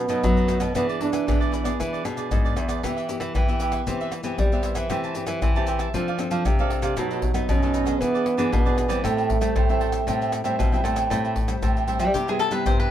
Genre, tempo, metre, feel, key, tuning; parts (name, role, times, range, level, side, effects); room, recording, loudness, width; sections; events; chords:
samba and choro; 116 BPM; 4/4; straight; A minor; A4 = 440 Hz
breathy trombone; second line; 0.0-1.8, 7.0-10.6 s; F#3 to D4; -25 LUFS; right 4 dB
nylon-string guitar; accompaniment; 0.0-12.9 s; F#2 to A4; -30 LUFS; left 3 dB
nylon-string guitar; bass; 0.0-12.9 s; E2 to B3; -28 LUFS; equal
cavaquinho; accompaniment; 0.1-12.9 s; D4 to A5; -30 LUFS; right 5 dB
maracas, pandeiro, surdo and tamborim; percussion; 0.1-12.9 s; -25 LUFS; left 1 dB
cavaquinho; melody; 12.1-12.9 s; G4 to C5; -25 LUFS; left 5 dB
moderate small room reverb, RT60 0.6 s; minimal, uncompressed stereo recording; -21 LUFS; side -11 dB against mid
0.0-11.1 A section; 11.1-12.9 B section
trombone solo 0.0-11.1; cavaquinho solo 11.1-12.9
0.0 B7; 0.8 E7; 2.8 Em; 3.9 Cmaj7/E; 4.9 Am7/E; 5.9 F6; 7.0 B7; 8.0 E7; 9.0 Am7; 12.1 Cmaj7